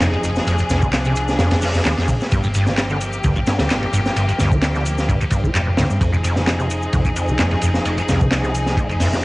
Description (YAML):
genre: breakbeat, breaks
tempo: 130 BPM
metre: 4/4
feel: straight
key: unclear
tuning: A4 = 440 Hz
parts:
  - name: bright studio string section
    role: sustained chords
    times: 0.0-9.2 s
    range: F3 to Ab4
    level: -24 LUFS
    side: left 1 dB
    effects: sidechain pumping
  - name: deep acid bass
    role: riff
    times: 0.0-9.2 s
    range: F2 to Ab3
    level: -22 LUFS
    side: equal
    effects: ensemble chorus, analog delay
  - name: hollow-body short-scale picked electric bass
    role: bass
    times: 0.0-9.2 s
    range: F1 to G2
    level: -21 LUFS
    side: equal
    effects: tube saturation
  - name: crunchy breakbeat drum kit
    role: drums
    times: 0.0-9.2 s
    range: hi-hat, kick drum, ride cymbal, snare drum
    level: -21 LUFS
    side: equal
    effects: cassette tape
  - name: electronic handclaps and shaker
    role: drums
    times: 0.0-9.2 s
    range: none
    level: -28 LUFS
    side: equal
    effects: cassette tape
room: light reverb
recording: home recording on cassette, vinyl crackle, nothing above 10.3 kHz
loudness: -16 LUFS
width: side -21 dB against mid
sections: 0.0-9.2 A section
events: none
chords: 0.0 Fm7; 2.3 Gm7; 6.0 Fm7